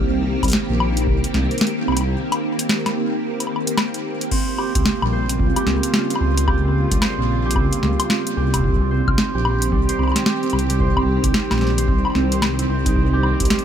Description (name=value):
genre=IDM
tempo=111 BPM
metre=4/4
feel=swing 62% on 16ths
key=C phrygian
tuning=A4 = 440 Hz
part: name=soft string machine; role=sustained chords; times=0.0-13.6 s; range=Db3 to G4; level=-24 LUFS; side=equal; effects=phaser, ensemble chorus, sidechain pumping
part: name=dark detuned saw bass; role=bass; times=0.0-13.5 s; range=Bb1 to Db2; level=-20 LUFS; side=equal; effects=tube saturation
part: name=booming analog drum machine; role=drums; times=0.4-13.6 s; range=crash cymbal, hi-hat, snare drum, woodblock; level=-23 LUFS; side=left 1 dB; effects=overdrive, digital delay
part: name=electronic kick drum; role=drums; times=0.4-13.5 s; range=none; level=-22 LUFS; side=equal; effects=overdrive
part: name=concert harp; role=arpeggios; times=4.3-13.6 s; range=G3 to C5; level=-23 LUFS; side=right 3 dB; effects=vintage 12-bit sampler grit, ping-pong delay
room=light reverb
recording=none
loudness=-17 LUFS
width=side -9 dB against mid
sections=0.0-13.6 A section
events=break 2.2-4.3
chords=0.0 Cm7; 4.3 Db6; 8.6 Eb6/Bb; 13.0 Cm7